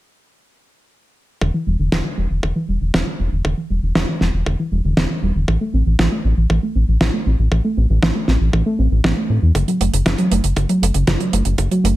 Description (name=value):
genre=italo disco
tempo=118 BPM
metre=4/4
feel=straight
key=E minor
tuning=A4 = 440 Hz
part: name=soft round pluck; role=arpeggios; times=1.4-11.9 s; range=C#3 to C4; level=-21 LUFS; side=right 2 dB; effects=chorus, ping-pong delay
part: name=round analog bass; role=bass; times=1.4-11.9 s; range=E1 to A2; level=-17 LUFS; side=equal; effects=none
part: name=electronic kick drum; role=drums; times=1.4-11.7 s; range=none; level=-25 LUFS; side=equal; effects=overdrive, high-pass filter on kick, high-pass filter on room
part: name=damped 70s drum kit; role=drums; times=1.9-11.9 s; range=hi-hat, snare drum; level=-20 LUFS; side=right 1 dB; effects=gated reverb
room=little or no reverb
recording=none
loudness=-16 LUFS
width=side -16 dB against mid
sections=1.4-12.0 A section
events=filter sweep on analog synth bass 1.4-12.0; filter sweep on synth arpeggio sound 1.4-12.0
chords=1.4 Em7; 5.5 Am; 9.6 F#m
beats=| 1.42 1.92 2.43 2.94 | 3.45 3.96 4.47 4.97 | 5.48 5.99 6.50 7.01 | 7.52 8.03 8.53 9.04 | 9.55 10.06 10.57 11.08 | 11.58